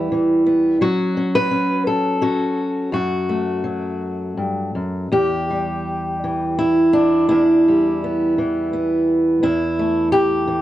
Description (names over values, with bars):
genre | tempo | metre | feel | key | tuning
folk, solo fingerstyle acoustic guitar | 85 BPM | 3/4 | rubato | E dorian | A4 = 439 Hz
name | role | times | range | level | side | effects
fingerpicked steel-string acoustic guitar | solo | 0.0-10.6 s | E2 to B4 | -16 LUFS | equal | none
room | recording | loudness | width
moderate small room reverb, RT60 0.5 s | worn, warbling old tape, cassette tape, warbly pitch drift | -16 LUFS | side -13 dB against mid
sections
0.0-5.1 A section; 5.1-10.6 B section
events
none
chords
0.0 Em; 0.8 F#m; 5.1 Em; 9.4 A5/E